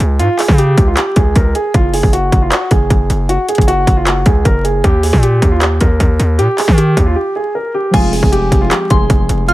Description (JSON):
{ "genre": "hip hop, trap", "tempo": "155 BPM", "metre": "4/4", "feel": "half-time", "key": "F minor", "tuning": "A4 = 440 Hz", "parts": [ { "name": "dark concert grand piano", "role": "melody", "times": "0.0-9.5 s", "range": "F4 to Bb4", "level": "-16 LUFS", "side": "right 1 dB", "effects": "digital delay" }, { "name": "distorted 808-style bass", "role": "bass", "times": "0.0-9.5 s", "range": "F1 to Eb3", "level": "-14 LUFS", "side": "equal", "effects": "distortion" }, { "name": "trap drum kit", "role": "drums", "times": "0.0-9.5 s", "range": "crash cymbal, handclaps, hi-hat, kick drum", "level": "-13 LUFS", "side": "equal", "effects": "none" }, { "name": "soft synth bell", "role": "second line", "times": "7.9-9.5 s", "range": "Ab5 to F6", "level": "-20 LUFS", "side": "equal", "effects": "chorus, phaser, digital delay" }, { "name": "warbly lo-fi synth keys", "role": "accompaniment", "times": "7.9-9.5 s", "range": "F3 to Ab4", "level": "-19 LUFS", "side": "left 1 dB", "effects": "chorus" } ], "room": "digital ambience", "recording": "vinyl crackle", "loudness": "-10 LUFS", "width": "side -16 dB against mid", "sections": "0.0-7.9 A section; 7.9-9.5 B section", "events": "break 7.2-7.9", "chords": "0.0 Db5; 1.7 Gb5; 4.8 Eb5; 7.9 Fm" }